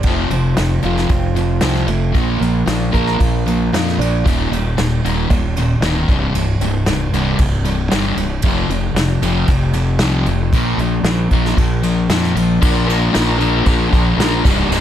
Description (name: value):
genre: quiet-loud alternative rock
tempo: 115 BPM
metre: 4/4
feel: straight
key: unclear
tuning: A4 = 441 Hz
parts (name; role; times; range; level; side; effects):
- fingerpicked acoustic archtop guitar; arpeggios; 0.0-4.3 s; F2 to Bb4; -23 LUFS; right 7 dB; plate reverb
- fuzz guitar; riff; 0.0-14.8 s; C2 to Bb4; -17 LUFS; left 1 dB; distortion
- fuzz fingered electric bass; bass; 0.0-14.8 s; C1 to F2; -19 LUFS; equal; overdrive
- vintage brush drum kit; drums; 0.0-14.8 s; crash cymbal, kick drum, ride cymbal, snare drum; -19 LUFS; equal; none
room: little or no reverb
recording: none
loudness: -14 LUFS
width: side -10 dB against mid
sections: 0.0-12.6 A section; 12.6-14.8 B section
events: none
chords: 0.1 F; 2.2 Bb; 4.3 Eb5; 6.1 C5; 8.4 F5; 10.5 Bb5; 12.6 Bb